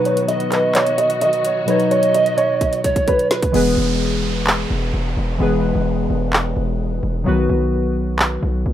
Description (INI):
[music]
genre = hip hop, trap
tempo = 129 BPM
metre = 4/4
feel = half-time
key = unclear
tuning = A4 = 441 Hz
[part]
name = dark grand piano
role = melody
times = 0.0-3.5 s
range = B4 to D#5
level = -19 LUFS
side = right 1 dB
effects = low-pass filter, digital delay
[part]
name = breathy polished pan flute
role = second line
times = 0.0-3.5 s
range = B4 to D#5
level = -21 LUFS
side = right 4 dB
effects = digital delay
[part]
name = warbly lo-fi synth keys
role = accompaniment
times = 0.0-8.7 s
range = B2 to Db5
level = -21 LUFS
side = left 2 dB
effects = chorus, low-pass filter
[part]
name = warm studio string section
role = sustained chords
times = 0.0-3.5 s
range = D#3 to F#4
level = -29 LUFS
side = left 2 dB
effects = low-pass filter
[part]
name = trap drum kit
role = drums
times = 0.1-8.3 s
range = crash cymbal, handclaps, hi-hat, kick drum, snare drum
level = -20 LUFS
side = equal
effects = none
[part]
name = hard-hitting 808-style bass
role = bass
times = 3.5-8.7 s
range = E1 to B1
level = -21 LUFS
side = equal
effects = none
[part]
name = downlifter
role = sound effects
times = 3.5-7.3 s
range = none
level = -29 LUFS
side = right 1 dB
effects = none
[sound]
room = little or no reverb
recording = rough home demo mix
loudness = -16 LUFS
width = side -11 dB against mid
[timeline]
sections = 0.0-3.5 A section; 3.5-8.7 B section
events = filter sweep 0.0-3.5; drum fill 2.6-3.5; hi-hats muted 3.5-8.7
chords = 0.0 B; 3.5 E; 7.3 B